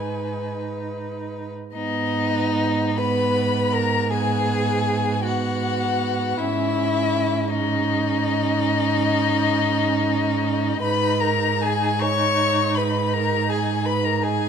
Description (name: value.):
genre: classical, slow romantic movement for string quartet.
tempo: 48-55 BPM (dotted quarters).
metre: 12/8.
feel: rubato.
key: G# minor.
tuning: A4 = 442 Hz.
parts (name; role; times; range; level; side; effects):
rich violin; melody; 0.0-14.5 s; D#5 to C#6; -25 LUFS; left 8 dB; none.
rich violin; second line; 0.0-14.5 s; D#4 to C#5; -25 LUFS; left 1 dB; none.
rich viola; accompaniment; 0.0-14.5 s; B3 to D#4; -27 LUFS; right 3 dB; none.
rich cello; bass; 0.0-14.5 s; G#2; -26 LUFS; right 5 dB; none.
room: light reverb.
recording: close, detailed microphones.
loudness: -19 LUFS.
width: side -7 dB against mid.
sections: 0.0-1.7 A section; 1.7-14.5 B section.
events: none.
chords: 0.0 G#m; 6.4 C#madd9/G#; 10.8 G#5.